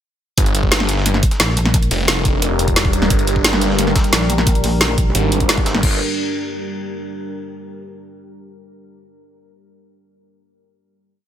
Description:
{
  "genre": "dark technical drum and bass",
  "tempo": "176 BPM",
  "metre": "4/4",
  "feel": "straight",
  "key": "G phrygian",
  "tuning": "A4 = 439 Hz",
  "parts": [
    { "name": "deep dark ambient pad", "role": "sustained chords", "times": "1.5-6.0 s", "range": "G3 to Bb4", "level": "-23 LUFS", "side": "equal", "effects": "chorus, built-in reverb, sidechain pumping" },
    { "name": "phased detuned saw bass", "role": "bass", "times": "0.4-6.0 s", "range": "F1 to Ab1", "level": "-19 LUFS", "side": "equal", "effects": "phaser, tube saturation" },
    { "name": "breakbeat sampler-style drum kit", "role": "drums", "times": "0.4-5.8 s", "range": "hi-hat, snare drum", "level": "-27 LUFS", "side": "equal", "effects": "none" },
    { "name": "drum and bass drum kit", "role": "drums", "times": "0.4-5.9 s", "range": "crash cymbal, hi-hat, snare drum", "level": "-18 LUFS", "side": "equal", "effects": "none" },
    { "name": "electronic kick drum", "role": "drums", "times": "0.4-5.9 s", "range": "none", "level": "-18 LUFS", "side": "equal", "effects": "overdrive" },
    { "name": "pulsing pluck wobble bass", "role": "bass", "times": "1.4-1.9, 4.1-5.1 s", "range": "Bb1", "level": "-18 LUFS", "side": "equal", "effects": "chorus" }
  ],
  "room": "little or no reverb",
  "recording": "none",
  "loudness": "-14 LUFS",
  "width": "side -10 dB against mid",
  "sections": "0.4-5.8 drop; 5.8-7.2 final chord",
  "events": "drop 0.4-5.8",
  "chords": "0.4 Gm"
}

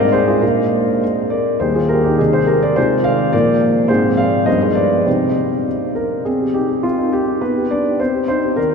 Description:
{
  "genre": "classical-period piano sonatina",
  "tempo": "103 BPM",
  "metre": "2/4",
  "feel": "rubato",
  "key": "C minor from 3.9 s",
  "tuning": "A4 = 438 Hz",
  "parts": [
    { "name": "warm concert grand piano", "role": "solo", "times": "0.0-8.7 s", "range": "Eb2 to F5", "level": "-14 LUFS", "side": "equal", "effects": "none" }
  ],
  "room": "wet cathedral reverb, RT60 5.6 s",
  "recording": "none",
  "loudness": "-14 LUFS",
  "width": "side -5 dB against mid",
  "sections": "0.0-6.3 A section; 6.3-8.7 B section",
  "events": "none",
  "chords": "0.4 Bb; 1.6 Eb; 2.2 Ab/C; 2.8 Fm7/C; 3.3 Bb; 3.9 Fm/Ab; 4.5 G7; 5.1 Cm; 7.4 G/B; 8.0 Cm"
}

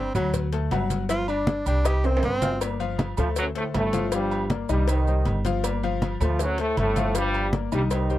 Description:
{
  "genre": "latin, salsa",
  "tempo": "158 BPM",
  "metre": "4/4",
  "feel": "straight",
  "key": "G minor",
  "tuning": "A4 = 440 Hz",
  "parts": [
    { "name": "clear tenor saxophone", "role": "melody", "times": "0.0-2.6 s", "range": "F#3 to G4", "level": "-26 LUFS", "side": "right 1 dB", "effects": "none" },
    { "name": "bright concert grand piano", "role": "accompaniment", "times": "0.0-8.2 s", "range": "Eb3 to F6", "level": "-30 LUFS", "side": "left 8 dB", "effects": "none" },
    { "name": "upright bass", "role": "bass", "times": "0.0-8.2 s", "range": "G1 to D2", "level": "-26 LUFS", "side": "right 1 dB", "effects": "none" },
    { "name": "congas", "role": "percussion", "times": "0.1-8.2 s", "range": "none", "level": "-28 LUFS", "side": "equal", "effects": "none" },
    { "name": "agogo bells and timbales", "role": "percussion", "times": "0.2-8.1 s", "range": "none", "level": "-35 LUFS", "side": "right 6 dB", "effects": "none" },
    { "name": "maracas", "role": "percussion", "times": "0.2-8.2 s", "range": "none", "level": "-41 LUFS", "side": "right 21 dB", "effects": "none" },
    { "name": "cowbell", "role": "percussion", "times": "0.3-8.1 s", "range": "none", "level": "-35 LUFS", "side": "left 6 dB", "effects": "none" },
    { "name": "bright trombone section", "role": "melody", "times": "3.2-8.2 s", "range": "F#2 to F4", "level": "-27 LUFS", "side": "right 1 dB", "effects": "none" }
  ],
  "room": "little or no reverb",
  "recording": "dry, close 1970s-style studio recording",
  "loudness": "-22 LUFS",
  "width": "side -14 dB against mid",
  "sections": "0.0-2.6 A section; 2.6-8.2 B section",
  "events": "tenor saxophone solo 0.0-2.6; drum fill 2.0-2.6",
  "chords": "0.3 D; 1.1 G5; 1.9 Cm; 2.6 Gm7; 3.4 D7; 4.1 Gm7; 4.9 Cm; 5.6 Gm7; 6.4 D7; 7.2 Gm7"
}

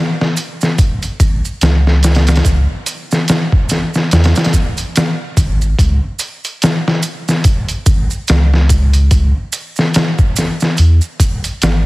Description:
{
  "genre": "trip hop",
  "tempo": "72 BPM",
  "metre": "4/4",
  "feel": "swing 58% on 16ths",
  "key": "C# minor",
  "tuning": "A4 = 438 Hz",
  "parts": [
    { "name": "trip hop sampler-style drum kit", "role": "drums", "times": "0.2-11.9 s", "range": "hi-hat, kick drum, snare drum", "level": "-13 LUFS", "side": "equal", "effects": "studio reverb" },
    { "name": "maracas", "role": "percussion", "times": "0.4-11.8 s", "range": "none", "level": "-26 LUFS", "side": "right 6 dB", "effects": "none" },
    { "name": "warm sub bass", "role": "bass", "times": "1.2-11.8 s", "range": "G#1 to E2", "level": "-11 LUFS", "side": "equal", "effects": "none" }
  ],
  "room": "digital ambience",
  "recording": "heavily compressed radio sound, multiband compression",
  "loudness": "-11 LUFS",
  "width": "side -20 dB against mid",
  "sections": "0.0-11.9 A section",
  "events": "none",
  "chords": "none"
}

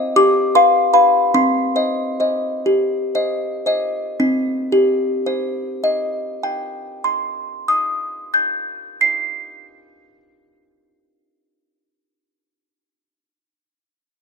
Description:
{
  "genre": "classical, lullaby for music box",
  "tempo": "36-54 BPM (dotted quarters)",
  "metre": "6/8",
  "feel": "straight",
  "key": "C minor",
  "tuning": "A4 = 440 Hz",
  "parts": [
    { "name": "music box", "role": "solo", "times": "0.0-12.3 s", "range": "C4 to C7", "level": "-16 LUFS", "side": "left 1 dB", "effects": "none" }
  ],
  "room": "light reverb",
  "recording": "close, detailed microphones",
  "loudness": "-16 LUFS",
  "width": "side -5 dB against mid",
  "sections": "0.0-4.2 A section; 4.2-10.9 B section",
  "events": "slowing down 0.0-4.2",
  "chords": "0.1 G7; 1.3 Cm"
}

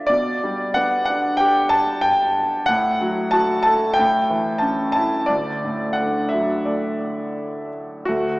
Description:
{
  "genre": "classical, lyrical solo piano",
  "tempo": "82-94 BPM",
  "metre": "4/4",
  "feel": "rubato",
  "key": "D major",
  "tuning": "A4 = 440 Hz",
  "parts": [
    { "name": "warm grand piano", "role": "solo", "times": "0.0-8.4 s", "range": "D2 to A5", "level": "-18 LUFS", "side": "equal", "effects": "none" }
  ],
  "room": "wet church reverb, RT60 3.3 s",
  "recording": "recorded in a church or concert hall, small speaker sound",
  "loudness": "-18 LUFS",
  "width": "side -22 dB against mid",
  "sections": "0.0-8.1 A section",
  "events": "none",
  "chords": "0.1 G/B; 2.7 F#m/A; 4.0 A7; 5.3 D"
}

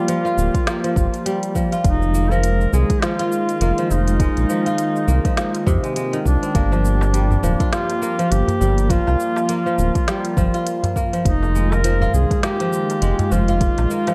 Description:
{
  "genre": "organic downtempo",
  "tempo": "102 BPM",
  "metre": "4/4",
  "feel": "swing 58% on 16ths",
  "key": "F dorian",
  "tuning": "A4 = 436 Hz",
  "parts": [
    { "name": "warm duduk", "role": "melody", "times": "0.0-14.1 s", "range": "D4 to Bb4", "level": "-27 LUFS", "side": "equal", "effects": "digital delay" },
    { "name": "warm analog pad", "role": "sustained chords", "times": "0.0-14.1 s", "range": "Eb3 to G4", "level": "-28 LUFS", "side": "equal", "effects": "chorus, sidechain pumping" },
    { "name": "kora", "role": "arpeggios", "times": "0.0-14.1 s", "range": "C3 to F4", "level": "-26 LUFS", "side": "equal", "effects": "delay" },
    { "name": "organic electronic drum kit", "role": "drums", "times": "0.1-14.1 s", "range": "hi-hat, shaker, snare drum", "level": "-31 LUFS", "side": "equal", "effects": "overdrive" },
    { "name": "round analog bass", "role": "bass", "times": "0.4-13.9 s", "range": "D1 to F2", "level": "-20 LUFS", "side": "equal", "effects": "sidechain pumping" },
    { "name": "electronic kick drum", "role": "drums", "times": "0.5-13.7 s", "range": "none", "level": "-23 LUFS", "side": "equal", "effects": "overdrive" },
    { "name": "darbuka", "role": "percussion", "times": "6.7-14.1 s", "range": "none", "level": "-29 LUFS", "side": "equal", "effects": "none" }
  ],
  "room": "light reverb, digital ambience",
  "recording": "dark, warm production",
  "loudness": "-19 LUFS",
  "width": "mono",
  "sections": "0.0-14.1 A section",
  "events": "none",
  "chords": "0.0 Gm7; 1.8 Fm7; 6.5 Gm7; 11.3 Fm7"
}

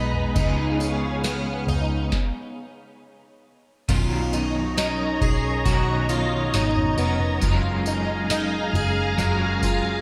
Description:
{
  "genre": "dream pop",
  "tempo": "68 BPM",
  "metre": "4/4",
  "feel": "straight",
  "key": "unclear",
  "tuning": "A4 = 440 Hz",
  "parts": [
    { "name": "electric guitar at the edge of break-up", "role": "accompaniment", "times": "0.0-10.0 s", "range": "B2 to A#4", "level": "-29 LUFS", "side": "equal", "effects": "tremolo, analog chorus" },
    { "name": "soft string machine", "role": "sustained chords", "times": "0.0-10.0 s", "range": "G#4 to B5", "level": "-31 LUFS", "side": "equal", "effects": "ensemble chorus" },
    { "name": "picked plugged-in twelve-string acoustic guitar", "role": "arpeggios", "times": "0.0-10.0 s", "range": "B3 to G#4", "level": "-30 LUFS", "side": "equal", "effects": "ensemble chorus, diffuse ambient delay" },
    { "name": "vintage muted picked electric bass", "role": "bass", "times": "0.0-10.0 s", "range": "E#1 to C#2", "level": "-29 LUFS", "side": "equal", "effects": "none" },
    { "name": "booming analog drum machine", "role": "drums", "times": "0.1-9.8 s", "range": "crash cymbal, kick drum, snare drum, tambourine, toms", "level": "-29 LUFS", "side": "equal", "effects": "none" }
  ],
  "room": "wet plate reverb, RT60 2.6 s",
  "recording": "dreamy mix soaked in reverb",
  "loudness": "-23 LUFS",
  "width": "mono",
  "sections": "0.0-3.9 A section; 3.9-10.0 B section",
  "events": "stop 2.1-3.9",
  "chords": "0.4 C#7; 2.1 N.C.; 3.9 Bmaj9; 7.4 F#maj9"
}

